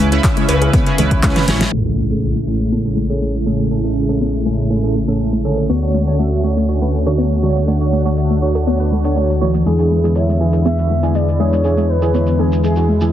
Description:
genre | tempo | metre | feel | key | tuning
progressive house | 121 BPM | 4/4 | straight | A major | A4 = 444 Hz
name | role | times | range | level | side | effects
warm analog pad | sustained chords | 0.0-13.1 s | C#3 to F#4 | -21 LUFS | left 2 dB | chorus, sidechain pumping
soft round pluck | arpeggios | 0.0-13.1 s | G#3 to A4 | -22 LUFS | left 1 dB | analog chorus, sidechain pumping, ping-pong delay
chorused polysynth | stabs | 0.0-13.1 s | A2 to E5 | -19 LUFS | right 2 dB | sidechain pumping, ping-pong delay
round analog bass | bass | 0.0-13.1 s | G#1 to E2 | -19 LUFS | equal | sidechain pumping
jazz brush drum kit | drums | 0.1-1.7 s | hi-hat, snare drum | -33 LUFS | equal | none
pop drum kit | drums | 0.1-1.7 s | handclaps, hi-hat, snare drum | -22 LUFS | left 1 dB | overdrive, low-pass filter on hats, low-pass filter on snare, low-pass filter on room
electronic kick drum | drums | 0.2-1.3 s | none | -16 LUFS | equal | overdrive
cowbell and congas | percussion | 0.5-1.5 s | none | -24 LUFS | equal | none
shekere | percussion | 1.7-13.1 s | none | -42 LUFS | right 3 dB | none
impact | sound effects | 1.7-3.7 s | none | -24 LUFS | left 1 dB | none
expressive portamento lead | melody | 9.7-13.1 s | G#4 to E5 | -20 LUFS | left 2 dB | chorus, vintage 12-bit sampler grit, ping-pong delay
room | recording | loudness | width
light reverb, small room ambience | heavily compressed radio sound, multiband compression, low-pass filter | -14 LUFS | side -11 dB against mid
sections
0.0-1.7 A section; 1.7-13.1 B section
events
drum fill 1.4-1.7; band accent 1.6; impact 1.7-3.7; filter sweep on synth pluck 1.7-13.1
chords
0.0 C#m7; 1.7 Amaj7; 5.7 Dmaj7; 9.7 E7

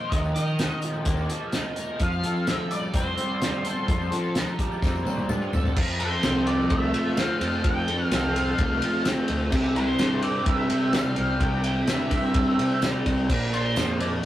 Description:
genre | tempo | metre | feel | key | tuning
psychedelic rock | 128 BPM | 4/4 | straight | unclear | A4 = 440 Hz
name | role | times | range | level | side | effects
octave-fuzz lead guitar | melody | 0.0-14.1 s | C5 to G5 | -30 LUFS | equal | wah, distortion
crunchy overdriven guitar | riff | 0.0-14.3 s | Bb2 to Bb4 | -26 LUFS | equal | rotary speaker
fuzz picked electric bass | bass | 0.1-14.2 s | Bb1 to F3 | -30 LUFS | equal | overdrive
cloth-damped thuddy drum kit | drums | 0.1-14.1 s | crash cymbal, hi-hat, kick drum, ride cymbal, snare drum, toms | -26 LUFS | equal | none
tambourine | percussion | 0.1-13.9 s | none | -46 LUFS | left 5 dB | none
room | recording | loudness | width
moderate studio reverb, RT60 0.6 s | rough rehearsal-room recording, tube saturation | -22 LUFS | side -13 dB against mid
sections
0.0-5.8 A section; 5.8-14.3 B section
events
drum fill 4.8-5.8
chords
0.0 Ebsus2; 2.0 Fadd9; 5.8 F; 9.5 C; 13.3 Bb5

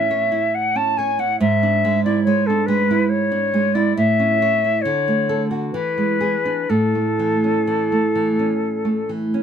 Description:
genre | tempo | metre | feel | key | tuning
romantic duo for flute and classical guitar | 60-71 BPM | 3/4 | rubato | A major | A4 = 439 Hz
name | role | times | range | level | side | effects
silver concert flute | melody | 0.0-9.1 s | A4 to A5 | -20 LUFS | left 3 dB | none
nylon-string guitar | accompaniment | 0.0-9.4 s | G#2 to C#5 | -19 LUFS | right 3 dB | none
room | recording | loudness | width
light reverb | close, detailed microphones | -16 LUFS | side -8 dB against mid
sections
0.0-9.4 A section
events
none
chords
0.0 A; 1.4 E7/G#; 4.0 A; 4.8 D; 5.7 E7; 6.7 A

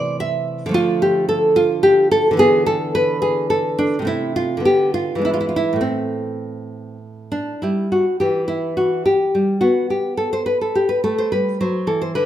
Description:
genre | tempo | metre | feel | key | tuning
classical, baroque-style dance for nylon-string guitar | 100-111 BPM | 3/4 | rubato | E minor from 7.6 s | A4 = 440 Hz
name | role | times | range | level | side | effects
nylon-string guitar | solo | 0.0-12.3 s | A2 to E5 | -16 LUFS | equal | none
room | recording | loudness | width
moderate recital hall reverb, RT60 1.3 s | minimal, uncompressed stereo recording | -16 LUFS | side -11 dB against mid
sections
0.0-7.6 A section; 7.6-12.3 A section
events
none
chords
0.0 Am/C; 0.8 Dm; 2.4 E5/D; 4.1 Am/C; 4.7 Bdim/D; 5.3 E7; 5.8 N.C.; 7.6 Em; 9.3 Gmaj9; 11.0 Am

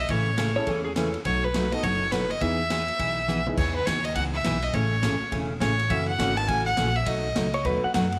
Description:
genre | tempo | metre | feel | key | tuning
country, western swing | 206 BPM | 4/4 | swing 62% on 8ths | E major | A4 = 441 Hz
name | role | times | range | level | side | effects
clear fiddle | melody | 0.0-7.6 s | B4 to A5 | -29 LUFS | equal | none
upright bass | bass | 0.0-8.2 s | E1 to F#2 | -32 LUFS | equal | none
picked steel-string acoustic guitar | accompaniment | 0.1-8.1 s | B2 to G#4 | -32 LUFS | equal | none
swinging big-band drum kit | drums | 0.1-8.2 s | crash cymbal, hi-hat, kick drum, ride cymbal, snare drum, toms | -35 LUFS | equal | none
clean lap steel guitar | second line | 0.6-1.2, 7.5-8.2 s | G#4 to F#5 | -30 LUFS | equal | none
warm upright piano | accompaniment | 0.6-3.6 s | B3 to B4 | -35 LUFS | equal | none
room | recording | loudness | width
light reverb, small room ambience | none | -25 LUFS | mono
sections
0.0-3.6 A section; 3.6-8.2 A section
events
drum fill 3.3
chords
0.1 Amaj7; 1.3 B7; 2.4 Emaj7; 4.7 Amaj7; 5.9 F#m9; 7.1 B7

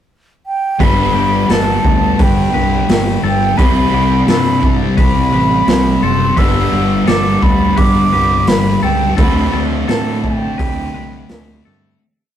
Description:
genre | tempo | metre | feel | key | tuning
rock, shoegaze and dream pop | 86 BPM | 4/4 | straight | G major | A4 = 439 Hz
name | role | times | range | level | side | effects
breathy mellow concert flute | melody | 0.5-11.3 s | G5 to E6 | -18 LUFS | right 2 dB | none
twangy electric guitar | arpeggios | 0.8-12.0 s | G4 to B4 | -25 LUFS | left 5 dB | none
crunchy overdriven guitar | riff | 0.8-12.0 s | G2 to F#4 | -18 LUFS | right 2 dB | none
thick fuzz guitar | riff | 0.8-12.0 s | G2 to D4 | -19 LUFS | left 7 dB | distortion
growling fingered electric bass | bass | 0.8-12.0 s | F#1 to A2 | -20 LUFS | equal | overdrive
raw garage drum kit | drums | 0.8-11.5 s | hi-hat, kick drum, snare drum | -17 LUFS | equal | none
room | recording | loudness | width
moderate stone room reverb, RT60 1.4 s | rough rehearsal-room recording, warm saturation | -11 LUFS | side -10 dB against mid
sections
0.0-0.8 pickup bar; 0.8-12.0 verse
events
fade-out 9.2-12.0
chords
0.0 N.C.; 0.8 G; 3.6 Cmaj7; 6.4 G; 9.2 D7sus4

